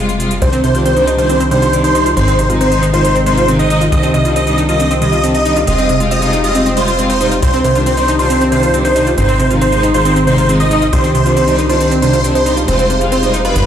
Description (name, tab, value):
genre	uplifting trance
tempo	137 BPM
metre	4/4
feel	straight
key	C minor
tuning	A4 = 439 Hz
part	clear studio string section	sustained chords	0.0-13.6 s	C3 to F4	-16 LUFS	left 1 dB	none
part	tight sequencer bass	bass	0.0-13.7 s	F1 to C2	-18 LUFS	equal	none
part	electronic hi-hat	drums	0.1-13.6 s	none	-27 LUFS	right 2 dB	studio ambience
part	big supersaw lead	melody	0.4-13.7 s	B4 to Eb5	-15 LUFS	right 1 dB	phaser, tape echo
part	analog pluck	arpeggios	0.4-13.6 s	C3 to F4	-17 LUFS	right 1 dB	chorus, tape echo
part	reverse cymbal	sound effects	13.6-13.7 s	none	-33 LUFS	right 5 dB	none
room	moderate scoring stage reverb, RT60 2.0 s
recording	played on a big sound system in a bare room, large studio reverb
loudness	-10 LUFS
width	side -9 dB against mid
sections	0.0-13.7 A section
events	none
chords	0.4 Cmadd9; 2.2 Ab; 3.9 Cmadd9; 5.7 Fmadd9; 7.4 Cmadd9; 9.2 Ab; 10.9 Cmadd9; 12.7 Fmadd9